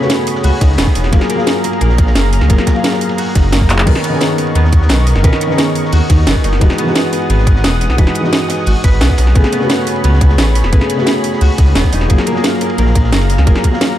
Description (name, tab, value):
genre	liquid drum and bass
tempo	175 BPM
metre	4/4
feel	straight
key	unclear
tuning	A4 = 440 Hz
part	felt-muted upright piano	accompaniment	0.0-14.0 s	C#3 to E#5	-17 LUFS	left 1 dB	ping-pong delay
part	warm analog pad	sustained chords	0.0-14.0 s	G#4 to D#6	-22 LUFS	equal	chorus
part	concert harp	arpeggios	0.0-14.0 s	A#3 to B4	-22 LUFS	equal	vintage 12-bit sampler grit, ping-pong delay
part	crunchy breakbeat drum kit	drums	0.0-13.9 s	hi-hat, ride cymbal, snare drum	-27 LUFS	equal	high-pass filter on hats, high-pass filter on cymbals, high-pass filter on snare, high-pass filter on room
part	drum and bass drum kit	drums	0.1-13.9 s	crash cymbal, handclaps, hi-hat, snare drum	-18 LUFS	right 1 dB	overdrive
part	dark detuned saw bass	bass	0.4-13.5 s	E1 to D#2	-12 LUFS	equal	none
part	electronic kick drum	drums	0.6-13.7 s	none	-11 LUFS	equal	overdrive
room	light reverb, small room reverb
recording	dark, warm production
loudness	-10 LUFS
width	side -12 dB against mid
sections	0.0-14.0 A section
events	drum fill 3.7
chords	0.0 Amaj9; 1.1 F#maj9; 3.9 Bmaj9; 6.6 Emaj9; 9.4 Amaj9; 12.1 F#maj9